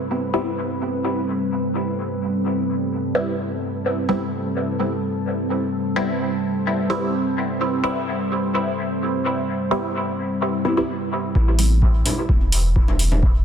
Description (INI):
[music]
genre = dub techno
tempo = 128 BPM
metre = 4/4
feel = straight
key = A minor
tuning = A4 = 441 Hz
[part]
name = deep dark ambient pad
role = sustained chords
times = 0.0-13.4 s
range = G3 to C5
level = -24 LUFS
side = equal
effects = chorus, built-in reverb, sidechain pumping
[part]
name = filtered dub chord stab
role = stabs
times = 0.3-11.7 s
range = G3 to E4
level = -25 LUFS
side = equal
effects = phaser, sidechain pumping, dub echo
[part]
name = soft dub sub bass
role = bass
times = 11.4-13.4 s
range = E1 to A1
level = -19 LUFS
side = equal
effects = sidechain pumping
[part]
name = electronic kick drum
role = drums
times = 11.4-13.3 s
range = none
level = -19 LUFS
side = equal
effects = none
[part]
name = electronic hi-hat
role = drums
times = 11.6-13.1 s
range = none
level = -24 LUFS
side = equal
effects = low-pass filter on hats
[part]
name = congas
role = percussion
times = 12.1-13.2 s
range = none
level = -27 LUFS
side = equal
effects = sidechain pumping on perc
[sound]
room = moderate lush hall reverb, RT60 1.9 s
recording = dense, heavily limited modern master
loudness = -19 LUFS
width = side -8 dB against mid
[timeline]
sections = 0.0-11.4 A section; 11.4-13.4 B section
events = none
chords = 0.0 Am9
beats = | 0.10 0.57 1.04 1.51 | 1.98 2.45 2.92 3.38 | 3.85 4.32 4.79 5.26 | 5.73 6.20 6.67 7.13 | 7.60 8.07 8.54 9.01 | 9.48 9.95 10.41 10.88 | 11.35 11.82 12.29 12.76 | 13.23